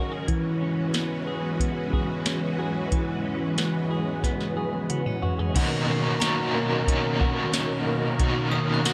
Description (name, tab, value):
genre	dream pop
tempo	91 BPM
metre	4/4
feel	straight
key	B major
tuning	A4 = 438 Hz
part	string machine, cellos	sustained chords	0.0-8.9 s	B2 to B4	-31 LUFS	equal	ensemble chorus
part	semi-hollow electric guitar	arpeggios	0.0-8.9 s	D#3 to G#4	-31 LUFS	equal	lush chorus, digital delay
part	soft vintage rhythm box	drums	0.3-8.9 s	crash cymbal, hi-hat, kick drum, snare drum, tambourine, toms	-29 LUFS	equal	none
part	crunchy overdriven guitar	accompaniment	5.5-8.9 s	B2 to F#4	-30 LUFS	equal	tremolo, subtle chorus
part	glockenspiel with brass mallets	texture	6.2-8.9 s	A#5 to F#6	-38 LUFS	equal	digital delay
room	moderate huge ambient reverb, RT60 5.0 s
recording	none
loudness	-26 LUFS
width	mono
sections	0.0-5.6 A section; 5.6-8.9 B section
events	drum fill 4.2-5.6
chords	0.3 F#9sus4; 5.6 Bmaj9